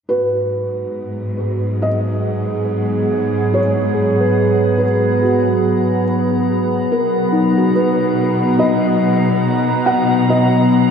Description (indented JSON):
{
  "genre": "ambient",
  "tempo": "70 BPM",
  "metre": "4/4",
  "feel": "straight",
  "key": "G# minor",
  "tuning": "A4 = 442 Hz",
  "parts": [
    { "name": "felt-muted upright piano", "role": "melody", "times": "0.1-10.9 s", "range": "F#4 to F#5", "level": "-21 LUFS", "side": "equal", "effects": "diffuse ambient delay" },
    { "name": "evolving wavetable pad", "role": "sustained chords", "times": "1.2-10.9 s", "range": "F#3 to A#5", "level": "-17 LUFS", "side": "equal", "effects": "chorus, built-in reverb" },
    { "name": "muted felt-like synth keys", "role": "arpeggios", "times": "0.1-10.9 s", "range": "D#4 to B4", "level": "-23 LUFS", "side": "equal", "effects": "chorus, diffuse ambient delay" },
    { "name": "clear studio cello section", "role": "bass", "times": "0.1-10.9 s", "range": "G#2 to B2", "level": "-21 LUFS", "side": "equal", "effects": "none" },
    { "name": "drifting glass-harmonics texture", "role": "texture", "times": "0.9-10.9 s", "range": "A#5", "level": "-37 LUFS", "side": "right 2 dB", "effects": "chorus, built-in reverb" }
  ],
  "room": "wet lush hall reverb, RT60 2.8 s",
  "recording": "dreamy mix soaked in reverb",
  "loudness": "-14 LUFS",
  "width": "side -7 dB against mid",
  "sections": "0.1-10.9 A section",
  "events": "fade-in on synth texture 0.1-10.9",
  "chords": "0.1 G#m7; 6.9 Bmaj7",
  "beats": "| 0.10 0.96 1.82 2.67 | 3.52 4.36 5.21 6.05 | 6.90 7.74 8.59 9.45 | 10.30"
}